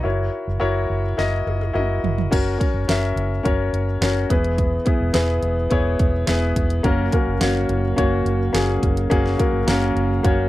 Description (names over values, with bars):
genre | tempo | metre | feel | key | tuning
piano-driven pop | 106 BPM | 4/4 | straight | unclear | A4 = 443 Hz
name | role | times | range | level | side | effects
warm concert grand piano | accompaniment | 0.0-10.5 s | E3 to E5 | -21 LUFS | left 2 dB | none
vintage muted fingered electric bass | bass | 0.0-10.5 s | E1 to F#1 | -22 LUFS | right 1 dB | none
pop drum kit | drums | 1.2-10.4 s | crash cymbal, hi-hat, kick drum, snare drum, toms | -22 LUFS | right 1 dB | none
tonewheel organ | sustained chords | 6.8-10.5 s | C#3 to F#4 | -27 LUFS | right 5 dB | overdrive, slow rotary speaker
room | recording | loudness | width
little or no reverb | dry, close 1970s-style studio recording | -18 LUFS | side -16 dB against mid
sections
0.0-2.3 A section; 2.3-10.5 B section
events
drum fill 1.2-2.3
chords
0.1 F#7; 2.3 F#; 4.3 E; 6.8 F#